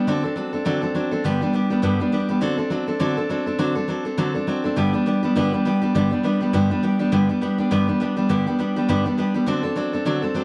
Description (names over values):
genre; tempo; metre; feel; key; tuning
rock; 204 BPM; 4/4; swing 58% on 8ths; G major; A4 = 440 Hz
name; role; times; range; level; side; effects
picked steel-string acoustic guitar; solo; 0.0-10.4 s; G2 to A4; -22 LUFS; equal; none
room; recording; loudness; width
light reverb, studio reverb; none; -22 LUFS; mono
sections
0.0-5.9 A section; 5.9-10.4 B section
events
none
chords
0.1 D7; 1.2 G; 2.4 D7; 4.8 G; 9.5 D7